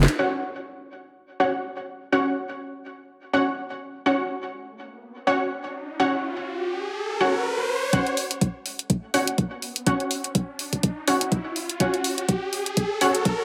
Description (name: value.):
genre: bass house.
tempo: 124 BPM.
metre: 4/4.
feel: swing 56% on 16ths.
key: unclear.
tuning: A4 = 441 Hz.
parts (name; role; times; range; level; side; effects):
house drum kit; drums; 0.0-0.2, 7.9-13.4 s; hi-hat, snare drum; -30 LUFS; equal; none.
orchestra-hit-like synth stab; stabs; 0.2-13.1 s; C#4 to F#5; -27 LUFS; equal; built-in reverb, sidechain pumping, delay.
riser; sound effects; 5.1-13.4 s; none; -32 LUFS; equal; none.
electronic kick drum; drums; 7.9-13.4 s; none; -25 LUFS; equal; high-pass filter on kick.
room: moderate plate reverb, RT60 1.6 s.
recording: none.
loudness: -25 LUFS.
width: mono.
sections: 0.2-7.9 A section; 7.9-13.4 B section.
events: drum fill 0.0; band accent 0.0; riser 5.5-7.9, 7.9-13.4; build-up 7.9-13.4.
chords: 0.2 F#5.